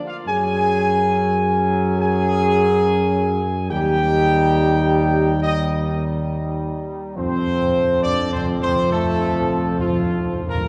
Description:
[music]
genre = classical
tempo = 69 BPM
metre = 4/4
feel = straight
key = unclear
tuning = A4 = 440 Hz
[part]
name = mellow trombone section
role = sustained chords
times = 0.0-10.7 s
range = F3 to Eb4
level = -27 LUFS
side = equal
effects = none
[part]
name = dark trumpet section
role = melody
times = 0.1-10.7 s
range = F4 to Ab5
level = -24 LUFS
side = equal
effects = none
[part]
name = mellow French horn section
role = sustained chords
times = 0.1-10.6 s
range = F3 to Ab4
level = -26 LUFS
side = equal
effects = none
[part]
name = mellow tuba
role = bass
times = 0.3-10.7 s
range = Eb2 to Gb2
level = -25 LUFS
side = equal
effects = none
[part]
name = timpani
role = percussion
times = 7.2-10.7 s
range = F2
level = -30 LUFS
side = equal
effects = none
[sound]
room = wet church reverb, RT60 3.1 s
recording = dark, warm production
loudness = -19 LUFS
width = mono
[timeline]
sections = 0.0-10.7 A section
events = timpani fill 7.2-10.7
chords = 0.3 Gbsus2; 3.7 Eb; 7.2 F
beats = | 0.27 1.13 1.99 2.85 | 3.71 4.57 5.43 6.30 | 7.17 8.03 8.91 9.80

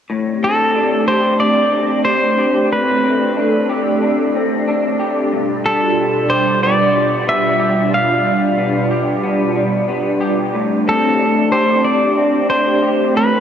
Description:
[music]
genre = dream pop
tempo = 92 BPM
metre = 4/4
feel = straight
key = A minor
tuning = A4 = 440 Hz
[part]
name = hollow soft pad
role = sustained chords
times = 0.1-13.4 s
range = B2 to D5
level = -18 LUFS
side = right 1 dB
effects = ensemble chorus
[part]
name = electric guitar through a small old amp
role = arpeggios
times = 0.1-13.4 s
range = G2 to G4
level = -19 LUFS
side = left 2 dB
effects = ensemble chorus, tape echo
[part]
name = pedal steel guitar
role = melody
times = 0.4-13.4 s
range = A4 to F5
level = -16 LUFS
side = equal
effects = tape echo
[sound]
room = wet huge ambient reverb, RT60 4.4 s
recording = worn, warbling old tape, cassette tape, warbly pitch drift, lossy compression artefacts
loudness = -13 LUFS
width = side -8 dB against mid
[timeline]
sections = 0.1-13.4 A section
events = none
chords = 0.1 Am11; 5.3 G7; 10.5 Am11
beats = | 0.10 0.75 1.41 2.06 | 2.71 3.36 4.01 4.67 | 5.32 5.97 6.62 7.28 | 7.93 8.58 9.23 9.88 | 10.54 11.19 11.84 12.49 | 13.15

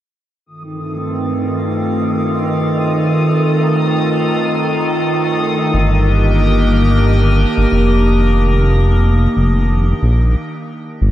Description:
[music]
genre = IDM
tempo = 91 BPM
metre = 4/4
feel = swing 56% on 16ths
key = unclear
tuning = A4 = 440 Hz
[part]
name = icy glass pad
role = sustained chords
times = 0.8-11.1 s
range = G2 to Bb4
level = -16 LUFS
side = equal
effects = chorus, built-in reverb
[part]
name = bubbling stepped-filter texture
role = texture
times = 0.6-10.4 s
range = Eb3 to Eb6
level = -21 LUFS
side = equal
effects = chorus, built-in reverb
[part]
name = dark detuned saw bass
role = bass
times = 5.7-11.1 s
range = F1 to Bb1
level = -12 LUFS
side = equal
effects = tube saturation
[sound]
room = moderate echo chamber reverb, RT60 2.5 s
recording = none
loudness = -12 LUFS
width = side -13 dB against mid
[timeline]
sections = 0.5-11.0 A section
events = filter sweep on ambient pad 0.5-11.0; stop 10.4-11.0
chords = 0.5 F7/G; 5.7 Ebmaj7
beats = | 0.46 1.12 1.78 2.44 | 3.10 3.76 4.42 5.08 | 5.74 6.40 7.06 7.71 | 8.37 9.03 9.69 10.35 | 11.01

